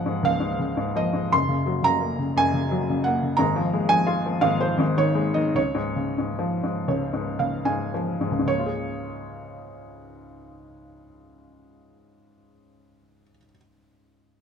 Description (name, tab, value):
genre	classical, lyrical solo piano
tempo	52-88 BPM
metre	3/4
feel	rubato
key	Db major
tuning	A4 = 438 Hz
part	felt-muted upright piano	solo	0.0-14.4 s	Gb1 to C6	-22 LUFS	equal	none
room	light reverb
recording	close, detailed microphones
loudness	-21 LUFS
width	side -7 dB against mid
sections	0.0-8.5 A section; 8.5-14.4 B section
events	slowing down 3.4-8.5; felt piano fill 6.4-8.5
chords	0.0 Db; 1.3 Gb; 3.4 Ab69; 4.8 Ab5; 5.6 Db; 8.5 Db6